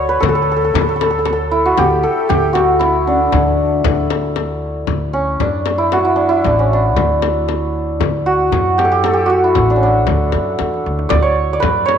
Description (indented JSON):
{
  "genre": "Persian modal ensemble",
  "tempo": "116 BPM",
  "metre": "3/4",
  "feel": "straight",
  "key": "D dastgah mahur",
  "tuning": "A4 = 440 Hz",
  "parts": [
    { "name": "santur", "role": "melody", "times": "0.0-12.0 s", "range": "C#4 to D5", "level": "-15 LUFS", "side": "right 2 dB", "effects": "none" },
    { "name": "breathy mellow ney", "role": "second line", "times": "0.0-4.3 s", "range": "D4 to C#5", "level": "-21 LUFS", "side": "left 11 dB", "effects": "none" },
    { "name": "upright bass", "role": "bass", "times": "0.0-12.0 s", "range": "A1 to F#2", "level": "-20 LUFS", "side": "equal", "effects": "none" },
    { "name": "frame drum", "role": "percussion", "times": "0.2-12.0 s", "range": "none", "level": "-22 LUFS", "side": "left 10 dB", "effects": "none" },
    { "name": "tombak", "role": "percussion", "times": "0.2-12.0 s", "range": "none", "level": "-24 LUFS", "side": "right 3 dB", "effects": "none" }
  ],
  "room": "moderate echo chamber reverb, RT60 2.0 s",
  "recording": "1960s-style stereo",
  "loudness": "-13 LUFS",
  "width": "side -8 dB against mid",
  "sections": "0.0-4.9 A section; 4.9-12.0 B section",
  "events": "drum fill 10.6-11.1",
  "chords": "none",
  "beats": "| 0.23 0.74 1.26 | 1.78 2.30 2.82 | 3.34 3.86 4.38 | 4.89 5.41 5.93 | 6.45 6.97 7.49 | 8.00 8.52 9.04 | 9.56 10.08 10.60 | 11.11 11.63"
}